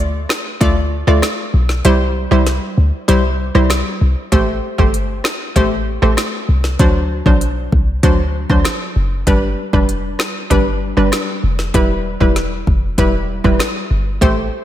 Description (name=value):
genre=dancehall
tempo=97 BPM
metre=4/4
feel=straight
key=A minor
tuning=A4 = 435 Hz
part: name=short 808-style bass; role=bass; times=0.0-14.5 s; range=E1 to D2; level=-16 LUFS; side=equal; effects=none
part: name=deep house drum kit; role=drums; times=0.3-14.4 s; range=hi-hat, kick drum, rim click, snare drum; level=-18 LUFS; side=equal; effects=none
part: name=hollow square pluck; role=accompaniment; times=0.6-14.6 s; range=F#3 to D5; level=-18 LUFS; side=right 1 dB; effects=chorus
room=light reverb, digital ambience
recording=none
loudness=-13 LUFS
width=side -12 dB against mid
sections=0.0-4.3 A section; 4.3-14.6 B section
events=kick muted 1.8-4.3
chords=0.0 Dm; 1.8 C; 4.3 Am7; 6.8 D7; 9.3 G; 11.7 Em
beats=0.61 1.23 | 1.85 2.46 3.08 3.70 | 4.32 4.94 5.56 6.18 | 6.79 7.41 8.03 8.65 | 9.27 9.89 10.51 11.12 | 11.74 12.36 12.98 13.60 | 14.22